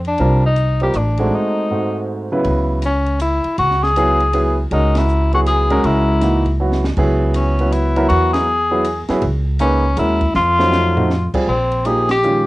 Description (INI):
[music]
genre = modal jazz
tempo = 160 BPM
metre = 3/4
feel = swing 64% on 8ths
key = C# dorian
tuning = A4 = 440 Hz
[part]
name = upright bass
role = bass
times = 0.0-12.4 s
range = A1 to F2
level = -18 LUFS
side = equal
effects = none
[part]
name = compact cocktail drum kit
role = drums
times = 0.0-12.3 s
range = crash cymbal, hi-hat, kick drum, ride cymbal, snare drum, toms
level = -27 LUFS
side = equal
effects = cassette tape
[part]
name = warm tenor saxophone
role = melody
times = 0.1-12.5 s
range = C4 to G#4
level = -18 LUFS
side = left 2 dB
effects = cassette tape
[part]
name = warm grand piano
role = accompaniment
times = 0.2-12.5 s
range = Ab2 to Cb5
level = -19 LUFS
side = right 1 dB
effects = cassette tape
[sound]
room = light reverb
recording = home recording on cassette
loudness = -14 LUFS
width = side -18 dB against mid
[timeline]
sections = 0.0-2.5 A section; 2.5-11.5 B section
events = break 1.3-2.5; band accent 4.9, 8.3, 12.0; drum fill 6.6-7.0, 10.4-11.1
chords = 0.0 F9sus4; 1.3 Ab7b9; 2.5 C#m11; 10.4 F7b9; 11.5 Bb9sus4